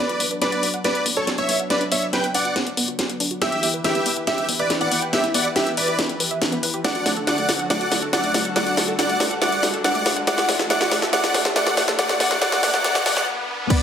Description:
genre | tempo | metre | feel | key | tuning
uplifting trance | 140 BPM | 4/4 | straight | B minor | A4 = 439 Hz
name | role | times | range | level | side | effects
dense compressed supersaw | melody | 0.0-13.8 s | G4 to G5 | -22 LUFS | equal | sidechain pumping, digital delay
dark baby grand piano | second line | 0.0-13.8 s | C#5 to G5 | -30 LUFS | left 2 dB | sidechain pumping, digital delay
lush unison pad | sustained chords | 0.0-13.8 s | D3 to B4 | -31 LUFS | left 1 dB | chorus, sidechain pumping
wide unison pluck | arpeggios | 0.0-13.7 s | A3 to G5 | -30 LUFS | right 2 dB | sidechain pumping, digital delay
riser and swell | sound effects | 1.1-13.7 s | none | -33 LUFS | left 1 dB | none
house drum kit | drums | 0.1-13.8 s | crash cymbal, hi-hat, snare drum | -22 LUFS | left 1 dB | none
solid FM bass | bass | 0.2-13.2 s | A1 to E2 | -40 LUFS | equal | none
electronic kick drum | drums | 13.7-13.8 s | none | -17 LUFS | equal | none
room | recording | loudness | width
wet digital room reverb, RT60 0.9 s | high-pass filter | -18 LUFS | side -8 dB against mid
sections
0.0-13.7 A section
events
build-up 0.0-13.7; drum fill 0.0-13.3; filter sweep on synth pluck 0.0-13.7; riser 1.1-13.7; swell 12.8-13.7; break 13.3-13.7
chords
0.0 Bm; 3.4 Em; 6.8 D; 10.3 Asus4

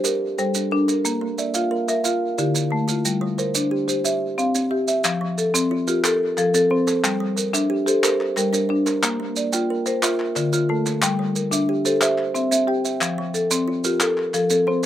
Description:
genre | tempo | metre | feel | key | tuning
southern african traditional, mbira-style interlocking cycle | 120 BPM (dotted quarters) | 12/8 | straight | F major | A4 = 439 Hz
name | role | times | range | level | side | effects
kalimba | arpeggios | 0.0-14.9 s | D3 to G5 | -26 LUFS | right 6 dB | slapback echo
marimba with medium mallets | arpeggios | 0.0-14.9 s | D3 to F5 | -20 LUFS | left 2 dB | none
maracas | percussion | 0.0-14.9 s | none | -25 LUFS | right 6 dB | none
group handclap | percussion | 5.0-14.4 s | none | -26 LUFS | left 2 dB | none
room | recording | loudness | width
light reverb | recorded outdoors, with no room sound | -19 LUFS | side -11 dB against mid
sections
0.0-5.0 A section; 5.0-14.9 B section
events
none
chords
0.0 Gm; 1.0 Bb; 2.0 Dm; 3.0 Gm; 4.0 C; 5.0 F; 7.0 Gm; 9.0 Bb; 10.0 Dm; 11.0 Gm; 12.0 C; 13.0 F

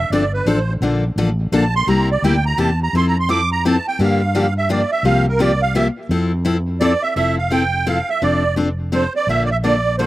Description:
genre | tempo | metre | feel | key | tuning
acoustic string swing (jazz manouche) | 170 BPM | 3/4 | swing 62% on 8ths | F major | A4 = 441 Hz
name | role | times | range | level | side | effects
musette accordion | melody | 0.0-10.1 s | Bb4 to D6 | -19 LUFS | right 3 dB | slapback echo
fretless electric bass | bass | 0.0-10.1 s | F1 to G2 | -20 LUFS | equal | none
picked steel-string acoustic guitar | accompaniment | 0.1-10.1 s | C3 to A4 | -20 LUFS | left 3 dB | slapback echo
room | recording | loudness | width
little or no reverb | recorded outdoors, with no room sound | -15 LUFS | side -16 dB against mid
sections
0.0-7.2 A section; 7.2-10.1 B section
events
accordion solo 0.0-7.2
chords
0.0 Dm7; 0.8 Bbmaj7; 1.9 C7; 2.9 Fmaj7; 4.0 Gm7; 5.0 C7sus4; 6.1 Fmaj7; 8.2 Dm7/F; 9.3 Bbmaj7

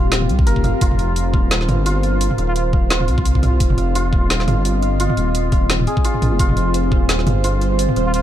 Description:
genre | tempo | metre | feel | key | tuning
half-time drum and bass | 172 BPM | 4/4 | swing 56% on 16ths, half-time | F minor | A4 = 437 Hz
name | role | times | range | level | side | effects
deep dark ambient pad | sustained chords | 0.0-8.2 s | C4 to Eb5 | -24 LUFS | left 2 dB | chorus, built-in reverb, sidechain pumping
santur | arpeggios | 0.0-8.2 s | F4 to F5 | -25 LUFS | right 2 dB | dub echo
dark detuned saw bass | bass | 0.0-8.2 s | Eb1 to C2 | -19 LUFS | equal | tube saturation
drum and bass drum kit | drums | 0.1-8.2 s | hi-hat, snare drum, toms | -22 LUFS | equal | overdrive, small room ambience
electronic kick drum | drums | 0.4-7.0 s | none | -17 LUFS | equal | overdrive, small room ambience
trumpet with plunger mute | melody | 2.5-2.6, 8.1-8.2 s | F4 | -29 LUFS | right 1 dB | digital delay
pulsing gated texture | texture | 6.6-8.2 s | C5 | -29 LUFS | right 10 dB | chorus, built-in reverb
room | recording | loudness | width
little or no reverb | dark, warm production | -15 LUFS | side -12 dB against mid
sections
0.0-8.2 A section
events
kick drops out 6.0-6.4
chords
0.0 F5

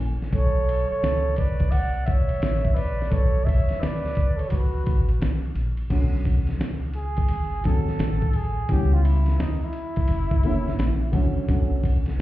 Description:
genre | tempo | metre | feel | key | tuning
hip hop, jazz-hop | 86 BPM | 4/4 | swing 64% on 16ths | B dorian | A4 = 440 Hz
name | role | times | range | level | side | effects
dark upright piano | accompaniment | 0.0-0.3, 5.9-12.0 s | D3 to G#5 | -29 LUFS | left 1 dB | none
upright bass | bass | 0.0-12.2 s | F#1 to E2 | -24 LUFS | equal | none
dusty soul sampler-style drum kit | drums | 0.2-12.2 s | crash cymbal, hi-hat, kick drum, ride cymbal, snare drum | -24 LUFS | equal | none
breathy flugelhorn | melody | 0.3-11.4 s | D#4 to F#5 | -29 LUFS | right 2 dB | none
concert flute | second line | 0.3-5.2 s | F#4 to D5 | -33 LUFS | right 3 dB | none
room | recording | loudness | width
little or no reverb | heard muffled through a wall, club reverb, EQ | -21 LUFS | side -15 dB against mid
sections
0.0-5.9 A section; 5.9-12.2 B section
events
upright piano fill 0.0-0.3; flugelhorn solo 5.9-12.2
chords
0.3 Bm9; 7.3 G#7b9; 8.7 C#m7b5; 10.1 F#7b13; 11.5 Bm9

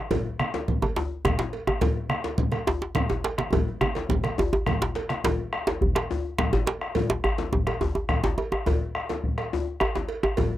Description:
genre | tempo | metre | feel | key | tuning
west african traditional, West African drum ensemble | 140 BPM (dotted quarters) | 12/8 | straight | none | none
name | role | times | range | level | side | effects
bombo | percussion | 0.1-10.5 s | none | -28 LUFS | left 2 dB | none
congas | percussion | 0.1-5.2 s | none | -30 LUFS | right 4 dB | none
cowbell | percussion | 0.1-10.5 s | none | -33 LUFS | right 6 dB | none
djembe | percussion | 0.1-10.5 s | none | -31 LUFS | left 4 dB | none
djembe | percussion | 0.1-10.5 s | none | -26 LUFS | right 1 dB | none
room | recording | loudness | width
light reverb | dry, close 1970s-style studio recording | -24 LUFS | side -13 dB against mid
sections
0.0-5.2 A section; 5.2-10.6 B section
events
drum fill 3.5-5.2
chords
none

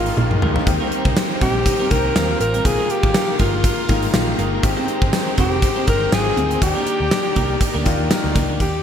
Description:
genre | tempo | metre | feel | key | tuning
1980s-style pop | 121 BPM | 4/4 | swing 55% on 16ths | Eb major | A4 = 440 Hz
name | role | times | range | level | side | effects
breathy alto saxophone | melody | 0.0-8.8 s | F4 to Bb4 | -22 LUFS | left 2 dB | ping-pong delay
scooped high-gain guitar | accompaniment | 0.0-8.8 s | Ab2 to Eb4 | -32 LUFS | equal | distortion, wide subtle chorus
warm concert grand piano | accompaniment | 0.0-8.6 s | Eb3 to G5 | -25 LUFS | left 4 dB | none
string machine, violas | sustained chords | 0.0-8.6 s | Bb4 to Bb5 | -29 LUFS | equal | ensemble chorus
vintage muted picked electric bass | bass | 0.0-8.8 s | F1 to Eb2 | -23 LUFS | equal | none
twelve-string electric guitar | riff | 0.1-8.6 s | G3 to C5 | -28 LUFS | right 4 dB | analog chorus, ping-pong delay
gated 80s drum kit | drums | 0.1-8.7 s | hi-hat, kick drum, snare drum, tambourine, toms | -20 LUFS | right 1 dB | none
room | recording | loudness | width
moderate lush hall reverb, RT60 1.9 s, small room ambience | bright 1980s-style digital production | -16 LUFS | side -8 dB against mid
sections
0.0-8.6 A section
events
drum fill 0.2-0.7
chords
0.0 Bb7sus4; 0.7 Eb6; 2.7 Bb7sus4; 4.6 Abmaj7; 6.6 Ebmaj7

